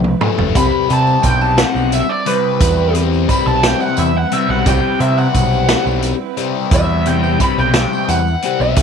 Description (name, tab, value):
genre	psychedelic rock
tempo	58 BPM (dotted quarters)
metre	6/8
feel	straight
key	C lydian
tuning	A4 = 440 Hz
part	rich symphonic string section	sustained chords	0.0-8.8 s	G3 to C5	-26 LUFS	right 15 dB	none
part	growling picked electric bass	bass	0.0-8.8 s	F#1 to C3	-17 LUFS	right 2 dB	overdrive
part	vintage drum kit	drums	0.0-8.8 s	hi-hat, kick drum, snare drum, toms	-18 LUFS	right 1 dB	none
part	fuzz guitar	riff	0.2-8.8 s	A2 to C4	-19 LUFS	left 14 dB	distortion, phaser
part	bluesy overdriven lead guitar	melody	0.6-8.8 s	B4 to B5	-18 LUFS	right 2 dB	wah, distortion, slapback echo
part	tambourine	percussion	0.6-8.8 s	none	-32 LUFS	right 19 dB	none
room	light reverb, small room ambience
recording	1960s-style stereo with parts hard left and right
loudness	-12 LUFS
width	side -6 dB against mid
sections	0.0-8.8 A section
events	drum fill 0.0-0.6; lead electric guitar solo 0.0-8.8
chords	0.0 Am; 0.6 Cmaj7